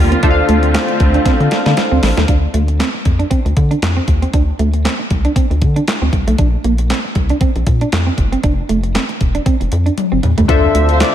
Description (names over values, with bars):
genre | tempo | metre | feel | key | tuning
early-eighties boogie funk | 117 BPM | 4/4 | swing 56% on 16ths | D minor | A4 = 440 Hz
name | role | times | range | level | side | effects
funky polysynth comp | accompaniment | 0.0-2.3, 10.5-11.1 s | D4 to F5 | -16 LUFS | left 2 dB | chorus
clear studio string section | sustained chords | 0.0-2.3, 10.5-11.1 s | D3 to E5 | -20 LUFS | left 1 dB | none
rubbery square bass | bass | 0.0-11.0 s | E1 to D3 | -15 LUFS | equal | none
electric guitar at the edge of break-up | riff | 0.1-10.4 s | A3 to D4 | -20 LUFS | right 4 dB | lush chorus
crisp 8-bit digital drum machine | drums | 0.1-11.1 s | handclaps, hi-hat, kick drum, snare drum, toms | -16 LUFS | equal | none
warm horn section | second line | 10.9-11.1 s | F4 to D5 | -24 LUFS | right 1 dB | none
room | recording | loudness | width
light reverb | none | -12 LUFS | side -10 dB against mid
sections
0.0-2.3 A section; 2.3-10.5 B section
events
drum fill 1.3-2.3, 10.0-10.5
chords
0.2 Dm7; 2.3 D7(no3); 6.4 Bb; 8.4 Fmaj7(no3); 10.5 Dm9